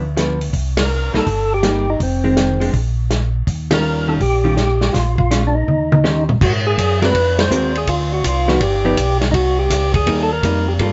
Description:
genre	soul jazz organ trio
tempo	164 BPM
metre	4/4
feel	swing 66% on 8ths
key	Eb mixolydian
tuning	A4 = 440 Hz
part	vintage hollow-body jazz guitar	accompaniment	0.0-10.9 s	Eb3 to C5	-22 LUFS	equal	none
part	mellow tonewheel organ	bass	0.0-10.9 s	F1 to Ab2	-22 LUFS	equal	overdrive, chorus vibrato, slow rotary speaker
part	warm soul drum kit	drums	0.2-10.9 s	crash cymbal, hi-hat, kick drum, ride cymbal, snare drum, toms	-22 LUFS	equal	none
part	percussive tonewheel organ	melody	0.8-10.9 s	C4 to C5	-21 LUFS	equal	slow rotary speaker
room	moderate studio ambience, RT60 0.5 s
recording	heard from further back in the room, nothing above 7.8 kHz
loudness	-17 LUFS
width	mono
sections	0.0-6.4 A section; 6.4-10.9 B section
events	band accent 0.7, 3.7, 7.3; drum fill 5.7-6.4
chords	0.0 G7 (rootless); 0.5 Cm7; 2.0 Fm7; 2.7 N.C.; 3.5 Eb9; 4.9 Bbm7; 5.7 Eb6; 6.4 Ab9; 7.9 Dm7; 8.6 G7b13; 9.3 Cm7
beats	0.17 | 0.54 0.90 1.27 1.64 | 2.00 2.37 2.74 3.10 | 3.47 3.84 4.21 4.57 | 4.94 5.30 5.67 6.04 | 6.41 6.77 7.14 7.50 | 7.87 8.23 8.60 8.97 | 9.33 9.70 10.06 10.43 | 10.80

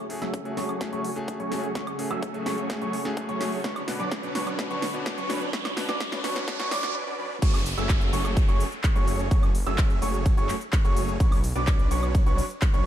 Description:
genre	EDM, festival progressive house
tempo	127 BPM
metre	4/4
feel	straight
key	F# minor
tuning	A4 = 440 Hz
part	lush unison pad	sustained chords	0.0-6.9 s	C#3 to B4	-37 LUFS	equal	chorus, sidechain pumping
part	clear grand piano	arpeggios	0.0-12.9 s	C#6 to E6	-34 LUFS	right 2 dB	sidechain pumping, low-pass filter, tape echo
part	big supersaw lead	riff	0.0-12.9 s	F#3 to E5	-31 LUFS	equal	vintage 12-bit sampler grit, sidechain pumping, low-pass filter, tape echo
part	riser and downlifter	sound effects	0.0-11.2 s	none	-38 LUFS	right 1 dB	none
part	bright grand piano	accompaniment	0.1-6.7 s	B2 to B4	-35 LUFS	left 2 dB	sidechain pumping, tape echo
part	big-room dance drum kit	drums	0.1-12.8 s	crash cymbal, handclaps, hi-hat, ride cymbal, shaker, snare drum, woodblock	-34 LUFS	equal	none
part	electronic kick drum	drums	0.3-12.7 s	none	-23 LUFS	equal	high-pass filter on kick, high-pass filter on room
part	detuned saw bass	bass	7.4-12.9 s	F#1 to B1	-29 LUFS	equal	sidechain pumping
room	little or no reverb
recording	dark, warm production, high-pass filter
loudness	-23 LUFS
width	side -11 dB against mid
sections	0.0-7.4 A section; 7.4-12.9 B section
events	build-up 0.0-7.4; drum fill 0.0-7.0; riser 0.0-7.0; filter sweep on supersaw synth 0.0-7.4; filter sweep on grand piano 0.0-7.4; filter sweep 0.0-7.4; break 7.0-7.4; drop 7.4-12.9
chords	0.0 F#madd9; 3.6 Bmadd9; 7.4 F#madd9; 11.2 Bmadd9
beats	0.34 0.81 1.28 | 1.75 2.23 2.70 3.17 | 3.64 4.12 4.59 5.06 | 5.53 6.00 6.48 6.95 | 7.42 7.89 8.37 8.84 | 9.31 9.78 10.26 10.73 | 11.20 11.67 12.15 12.62

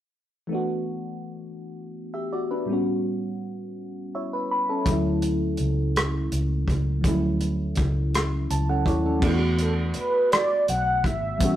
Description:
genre	slow six-eight R&B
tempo	55 BPM (dotted quarters)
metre	6/8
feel	straight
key	unclear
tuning	A4 = 440 Hz
part	mellow FM electric piano	accompaniment	0.5-11.6 s	A2 to B5	-27 LUFS	equal	chorus, phaser
part	vintage muted fingered electric bass	bass	4.9-11.6 s	G#1 to E2	-25 LUFS	equal	none
part	warm soul drum kit	drums	4.9-11.6 s	crash cymbal, hi-hat, kick drum, rim click	-26 LUFS	equal	none
part	mellow horn-like synth lead	melody	9.6-11.6 s	A4 to F#5	-23 LUFS	right 1 dB	chorus
room	moderate stone room reverb, RT60 1.0 s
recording	rough rehearsal-room recording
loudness	-22 LUFS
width	side -12 dB against mid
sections	0.5-9.2 A section; 9.2-11.6 B section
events	FM electric piano fill 3.8-4.9, 8.1-9.2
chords	0.5 E7sus4; 2.7 A13; 4.9 Dmaj9; 9.2 E7sus4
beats	| 0.50 1.59 | 2.68 3.77 | 4.86 5.96 | 7.05 8.14 | 9.23 10.32 | 11.41

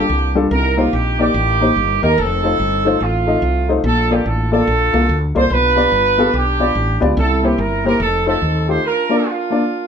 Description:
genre	uptempo gospel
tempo	144 BPM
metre	4/4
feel	swing 64% on 8ths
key	Bb major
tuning	A4 = 442 Hz
part	warm horn section	melody	0.0-9.9 s	A3 to C5	-17 LUFS	right 2 dB	none
part	warm upright piano	accompaniment	0.0-9.6 s	Bb2 to F5	-18 LUFS	left 3 dB	none
part	woody fretless electric bass	bass	0.0-8.8 s	F1 to Eb2	-19 LUFS	equal	none
room	moderate studio reverb, RT60 0.6 s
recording	band playing live in one room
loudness	-14 LUFS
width	side -7 dB against mid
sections	0.0-9.9 A section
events	none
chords	0.0 Gm7; 0.5 Cm7; 2.2 F7; 3.8 Bbmaj7; 5.5 G7; 7.2 C7; 8.0 F7; 8.8 Bb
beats	0.09 | 0.51 0.93 1.34 1.76 | 2.17 2.59 3.01 3.42 | 3.84 4.26 4.67 5.09 | 5.51 5.92 6.34 6.75 | 7.17 7.59 8.00 8.42 | 8.83 9.25 9.66

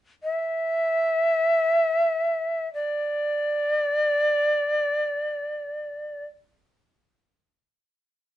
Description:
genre	japanese traditional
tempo	free time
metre	none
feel	none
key	unclear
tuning	A4 = 440 Hz
part	reedy shakuhachi	melody	0.2-6.3 s	D5 to E5	-22 LUFS	equal	none
room	light reverb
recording	nothing above 10.7 kHz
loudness	-22 LUFS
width	side -14 dB against mid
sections	0.0-8.4 A section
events	none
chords	none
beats	free time

